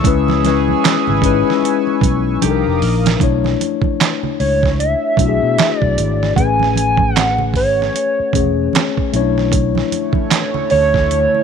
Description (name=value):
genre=R&B, neo-soul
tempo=76 BPM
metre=4/4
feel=swing 60% on 16ths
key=B dorian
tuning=A4 = 439 Hz
part: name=mellow tine electric piano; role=accompaniment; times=0.0-11.4 s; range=F3 to C#5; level=-18 LUFS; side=left 14 dB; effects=slow stereo tremolo
part: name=chorused pulse-width pad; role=sustained chords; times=0.0-3.2, 9.5-11.4 s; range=D3 to E6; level=-23 LUFS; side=right 2 dB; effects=none
part: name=warm horn section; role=stabs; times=0.0-2.8 s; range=Eb3 to G#4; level=-23 LUFS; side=right 14 dB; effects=none
part: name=fretless electric bass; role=bass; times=0.0-11.2 s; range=E1 to B2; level=-19 LUFS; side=right 1 dB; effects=lush chorus
part: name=dusty soul sampler-style drum kit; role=drums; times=0.0-11.3 s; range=handclaps, hi-hat, kick drum, snare drum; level=-18 LUFS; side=right 5 dB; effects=none
part: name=congas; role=percussion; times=0.0-11.4 s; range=none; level=-26 LUFS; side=right 13 dB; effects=none
part: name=hollow square lead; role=melody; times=4.4-11.4 s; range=C#5 to G#5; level=-16 LUFS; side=right 1 dB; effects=chorus
room=light reverb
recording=1960s-style stereo with parts hard left and right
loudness=-13 LUFS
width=side -7 dB against mid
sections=0.0-3.2 A section; 3.2-11.4 B section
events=drum fill 2.4-3.2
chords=0.0 C#m7; 2.4 Cm11; 3.2 Bm11; 6.4 Amaj9; 9.1 Bm11